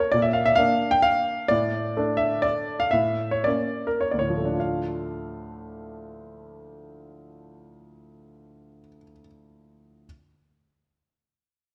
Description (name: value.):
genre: classical, piano waltz.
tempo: 98-135 BPM.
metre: 3/4.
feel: rubato.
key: D minor.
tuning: A4 = 442 Hz.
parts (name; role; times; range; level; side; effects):
clear concert grand piano; solo; 0.0-10.1 s; D2 to G5; -24 LUFS; equal; none.
room: wet recital hall reverb, RT60 1.6 s.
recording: none.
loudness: -24 LUFS.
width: mono.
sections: 0.0-4.6 A section; 4.6-7.9 B section.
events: slowing down 0.8-4.6.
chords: 0.1 Bb; 1.5 D5/A; 2.9 A; 4.6 Dm.